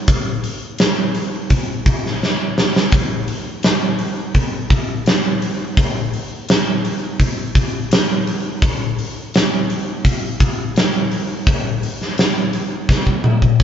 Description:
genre	rock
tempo	84 BPM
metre	4/4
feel	straight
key	none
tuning	none
part	big rock drum kit	drums	0.1-13.6 s	hi-hat, kick drum, snare drum, toms	-16 LUFS	equal	none
room	light reverb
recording	band playing live in one room, nothing above 7.6 kHz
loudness	-16 LUFS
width	side -9 dB against mid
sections	0.0-13.6 A section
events	drum fill 2.2-2.9, 12.9-13.6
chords	none

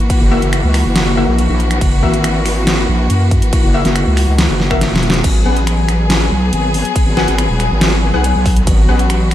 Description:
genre	heavy wobble dubstep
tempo	140 BPM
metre	4/4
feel	half-time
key	G# minor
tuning	A4 = 444 Hz
part	rich studio string section	sustained chords	0.0-9.3 s	E3 to G#4	-18 LUFS	left 2 dB	sidechain pumping
part	dubstep drum kit	drums	0.1-9.3 s	crash cymbal, finger snaps, hi-hat, snare drum	-19 LUFS	equal	overdrive
part	electronic kick drum	drums	0.1-8.8 s	none	-14 LUFS	equal	none
part	wobble bass	bass	0.2-9.3 s	D#1 to F#2	-15 LUFS	equal	chorus, overdrive
part	orchestra-hit-like synth stab	stabs	0.3-9.0 s	A#3 to F#5	-21 LUFS	left 3 dB	built-in reverb, cassette tape, ping-pong delay
room	moderate plate reverb, RT60 1.2 s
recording	dreamy mix soaked in reverb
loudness	-11 LUFS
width	side -12 dB against mid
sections	0.0-5.2 A section; 5.2-9.3 A section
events	drop 0.0-5.2, 5.2-9.3; drum fill 4.8-5.2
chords	0.0 F#7; 5.2 G#m7

